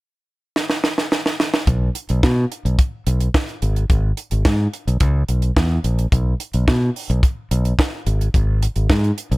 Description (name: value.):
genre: disco.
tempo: 108 BPM.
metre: 4/4.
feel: straight.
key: unclear.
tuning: A4 = 440 Hz.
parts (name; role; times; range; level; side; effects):
tight funk drum kit; drums; 0.6-9.4 s; hi-hat, kick drum, snare drum; -18 LUFS; equal; none.
modern bright fingered electric bass; bass; 1.7-9.4 s; G#1 to B2; -17 LUFS; equal; none.
room: little or no reverb.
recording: none.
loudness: -17 LUFS.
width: side -21 dB against mid.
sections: 0.0-1.7 A section; 1.7-9.4 B section.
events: drum fill 0.6-1.7.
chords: none.